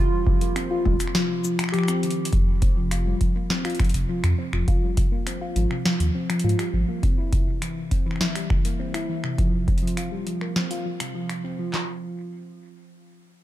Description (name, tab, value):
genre	IDM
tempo	102 BPM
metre	4/4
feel	straight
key	F minor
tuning	A4 = 440 Hz
part	warbly lo-fi synth keys	melody	0.0-2.3 s	F4 to G4	-31 LUFS	right 3 dB	chorus, dub echo
part	harp-like synth pluck	arpeggios	0.0-12.0 s	C3 to F4	-27 LUFS	left 1 dB	chorus, dub echo
part	booming analog drum machine	drums	0.3-11.9 s	handclaps, kick drum, snare drum	-22 LUFS	equal	none
part	booming analog drum machine	drums	0.4-11.4 s	cabasa, finger snaps, hi-hat, snare drum, toms	-29 LUFS	equal	none
part	dark detuned saw bass	bass	0.9-6.8 s	Eb1 to Ab2	-23 LUFS	equal	none
room	light reverb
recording	dark, warm production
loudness	-21 LUFS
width	side -14 dB against mid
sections	0.0-2.3 A section; 2.3-11.7 B section; 11.7-13.4 C section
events	kick drops out 1.1-2.3; drum fill 2.0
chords	0.0 Ebsus2; 2.3 F5; 4.7 Ab; 7.0 C; 9.4 Csus4; 11.7 N.C.